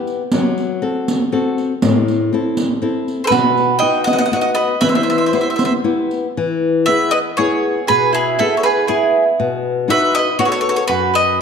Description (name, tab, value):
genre	italian folk, Italian serenade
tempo	119 BPM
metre	3/4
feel	rubato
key	E harmonic minor, E major from 6.4 s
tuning	A4 = 440 Hz
part	flamenco guitar	accompaniment	0.0-11.4 s	F#2 to A4	-18 LUFS	left 4 dB	none
part	riq	percussion	0.1-6.2 s	none	-20 LUFS	right 2 dB	none
part	bowl-back mandolin	melody	3.2-11.4 s	G#4 to G5	-17 LUFS	right 1 dB	none
part	mandolin	second line	3.3-11.4 s	E4 to D#5	-19 LUFS	right 5 dB	none
room	wet scoring stage reverb, RT60 1.7 s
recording	dark, warm production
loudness	-14 LUFS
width	side -6 dB against mid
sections	0.0-6.4 A section; 6.4-11.4 B section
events	none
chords	0.3 F#dim; 1.8 Am; 3.3 B; 4.8 Em; 6.4 E; 9.4 B